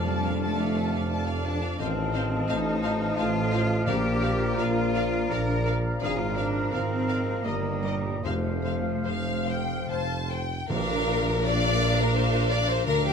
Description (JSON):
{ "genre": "classical, slow romantic movement for symphony orchestra", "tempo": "69-88 BPM", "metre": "3/4", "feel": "rubato", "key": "Bb major", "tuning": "A4 = 437 Hz", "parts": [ { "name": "rich studio violin section", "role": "melody", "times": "0.0-13.1 s", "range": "Eb5 to A5", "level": "-35 LUFS", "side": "left 3 dB", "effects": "none" }, { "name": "hollow flute section", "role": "second line", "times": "0.0-10.3 s", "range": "F5 to Bb5", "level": "-37 LUFS", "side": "left 3 dB", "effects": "none" }, { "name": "mellow clarinet", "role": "second line", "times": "0.0-10.3 s", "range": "Bb4 to Eb5", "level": "-38 LUFS", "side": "equal", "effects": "none" }, { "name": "warm oboe", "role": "second line", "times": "0.0-10.4 s", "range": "Eb5 to F5", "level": "-38 LUFS", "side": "right 2 dB", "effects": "none" }, { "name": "warm studio violin section", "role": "second line", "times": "0.0-13.1 s", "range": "G4 to Eb5", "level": "-31 LUFS", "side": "left 3 dB", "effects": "none" }, { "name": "rich chamber viola section", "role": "accompaniment", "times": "0.0-13.1 s", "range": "D4 to D5", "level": "-35 LUFS", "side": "right 3 dB", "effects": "none" }, { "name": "warm bassoon", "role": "accompaniment", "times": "0.0-10.3 s", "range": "F3 to G3", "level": "-36 LUFS", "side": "right 1 dB", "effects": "none" }, { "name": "mellow French horn section", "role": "sustained chords", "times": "0.0-9.9 s", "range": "Bb2 to D4", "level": "-33 LUFS", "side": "left 5 dB", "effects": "none" }, { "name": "concert harp", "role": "arpeggios", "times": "0.0-13.1 s", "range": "F2 to Bb5", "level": "-35 LUFS", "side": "left 10 dB", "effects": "none" }, { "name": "rich studio cello section", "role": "bass", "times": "0.0-13.1 s", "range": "D2 to Bb4", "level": "-32 LUFS", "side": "equal", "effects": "none" }, { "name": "rich studio double bass section", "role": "bass", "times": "0.0-13.1 s", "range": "F1 to F2", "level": "-31 LUFS", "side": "right 2 dB", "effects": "none" }, { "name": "warm tuba", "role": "bass", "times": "0.0-13.1 s", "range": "F1 to D2", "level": "-33 LUFS", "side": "right 5 dB", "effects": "none" }, { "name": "timpani", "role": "percussion", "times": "0.0-0.7, 3.9-4.9, 8.2-11.8 s", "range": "F2 to Bb2", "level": "-36 LUFS", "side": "right 1 dB", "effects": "none" }, { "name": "tam-tam", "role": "percussion", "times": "10.7-13.1 s", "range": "none", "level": "-39 LUFS", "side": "left 2 dB", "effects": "none" } ], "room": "moderate recital hall reverb, RT60 1.6 s", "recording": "none", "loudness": "-24 LUFS", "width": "side -6 dB against mid", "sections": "0.0-10.7 A section; 10.7-13.1 B section", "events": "band accent 10.7-11.4", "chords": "0.0 Dm/F; 1.8 F7/A; 3.9 Bb; 6.0 Bb7/Ab; 7.5 Eb/G; 8.3 F; 10.7 Bb", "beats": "0.42 1.10 | 1.81 2.50 3.19 | 3.89 4.60 5.32 | 6.03 6.73 7.46 | 8.26 9.06 9.90 | 10.70 11.45 12.17 | 12.88" }